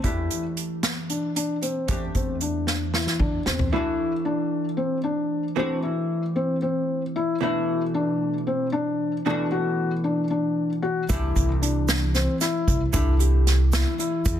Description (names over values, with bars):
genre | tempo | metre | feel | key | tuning
progressive instrumental, band music in an uneven meter | 228 BPM (eighths) | 7/8 | straight | unclear | A4 = 443 Hz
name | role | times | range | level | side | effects
vintage hollow-body jazz guitar | accompaniment | 0.0-14.4 s | B2 to G4 | -28 LUFS | right 1 dB | double-tracked left and right
felt-muted upright piano | arpeggios | 0.0-14.4 s | C4 to G4 | -26 LUFS | left 3 dB | none
upright bass | bass | 0.0-3.7, 11.1-14.4 s | C2 to E2 | -24 LUFS | equal | none
unplugged drum kit | drums | 0.0-3.7, 11.1-14.4 s | hi-hat, kick drum, snare drum, toms | -26 LUFS | right 1 dB | none
tube shaker | percussion | 11.1-14.4 s | none | -37 LUFS | right 11 dB | none
room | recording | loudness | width
light reverb | dense, heavily limited modern master | -22 LUFS | side -10 dB against mid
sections
0.0-3.7 A section; 3.7-14.4 B section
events
drum fill 2.7-3.7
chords
0.0 Em7; 3.7 F#m7b5; 7.4 Bm7; 11.1 C